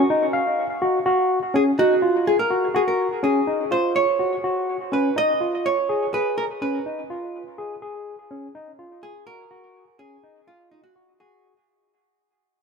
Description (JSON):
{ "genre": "progressive instrumental, progressive", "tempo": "248 BPM (eighths)", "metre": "7/8", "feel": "straight", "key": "unclear", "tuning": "A4 = 439 Hz", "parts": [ { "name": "hollow-body jazz guitar", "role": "melody", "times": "0.0-11.5 s", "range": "Eb4 to Eb5", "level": "-23 LUFS", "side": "right 2 dB", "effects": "dub echo" }, { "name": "barky tine electric piano", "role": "arpeggios", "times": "0.1-11.5 s", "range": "Db4 to F5", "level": "-22 LUFS", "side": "left 1 dB", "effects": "dub echo" } ], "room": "moderate plate reverb, RT60 2.4 s", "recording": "echo-heavy mix", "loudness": "-19 LUFS", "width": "side -5 dB against mid", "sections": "0.0-11.7 A section", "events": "fade-out 0.0-11.7", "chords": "0.0 Gb5; 4.9 Db7; 8.3 Gb" }